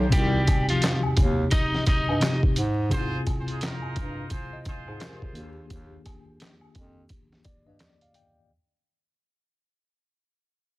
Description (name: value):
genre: hip hop, boom-bap hip-hop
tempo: 86 BPM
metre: 4/4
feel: swing 61% on 16ths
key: unclear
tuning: A4 = 443 Hz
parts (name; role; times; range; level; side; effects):
- mellow tine electric piano; accompaniment; 0.0-8.5 s; C3 to G5; -28 LUFS; left 1 dB; medium stereo tremolo, cassette tape
- mellow bass clarinet; bass; 0.0-7.8 s; C2 to Ab2; -27 LUFS; right 1 dB; none
- electric guitar at the edge of break-up; melody; 0.1-2.4 s; F3 to Eb5; -28 LUFS; equal; digital delay
- trip hop sampler-style drum kit; drums; 0.1-8.3 s; handclaps, hi-hat, kick drum, snare drum; -25 LUFS; equal; vintage 12-bit sampler grit
- egg shaker and woodblock; percussion; 0.1-8.3 s; none; -39 LUFS; left 1 dB; none
- mellow trumpet section; stabs; 2.9-5.2 s; Eb4 to C5; -39 LUFS; right 1 dB; digital delay
room: small room reverb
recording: dense, heavily limited modern master, vinyl crackle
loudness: -22 LUFS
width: side -19 dB against mid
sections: 0.0-8.5 A section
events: fade-out 0.0-8.5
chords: 0.0 Cm; 2.6 Ab6; 5.4 Ebmaj7